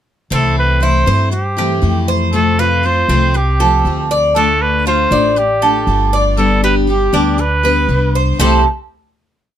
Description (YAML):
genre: latin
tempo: 119 BPM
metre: 4/4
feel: straight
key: C major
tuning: A4 = 440 Hz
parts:
  - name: breathy trumpet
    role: melody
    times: 0.3-8.6 s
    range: G4 to C5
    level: -17 LUFS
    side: right 2 dB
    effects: none
  - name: picked steel-string acoustic guitar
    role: accompaniment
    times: 0.3-8.6 s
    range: C3 to G4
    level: -19 LUFS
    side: left 6 dB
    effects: none
  - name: Cuban tres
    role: arpeggios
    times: 0.3-8.6 s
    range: C4 to D5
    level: -17 LUFS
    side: right 2 dB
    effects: none
  - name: upright bass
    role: bass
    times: 0.3-8.6 s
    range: G1 to G2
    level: -16 LUFS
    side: equal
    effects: none
room: light reverb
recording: close, detailed microphones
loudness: -11 LUFS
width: side -10 dB against mid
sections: 0.3-8.4 verse; 8.4-9.6 final chord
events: none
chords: 0.3 C6; 2.3 F; 4.4 Dm; 6.4 G; 8.4 C6